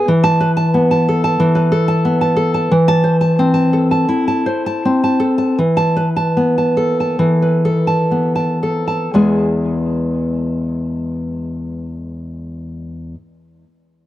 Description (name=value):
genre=romantic piece for solo classical guitar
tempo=57-92 BPM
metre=4/4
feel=rubato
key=E major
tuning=A4 = 440 Hz
part: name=nylon-string guitar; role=solo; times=0.0-13.1 s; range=E2 to A5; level=-14 LUFS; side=equal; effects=none
room=light reverb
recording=dry, close 1970s-style studio recording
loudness=-13 LUFS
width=side -14 dB against mid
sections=0.0-9.1 A section; 9.1-13.0 B section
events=slowing down 1.4-9.1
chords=0.1 Esus4; 2.7 Am/E; 5.6 Esus4; 9.1 E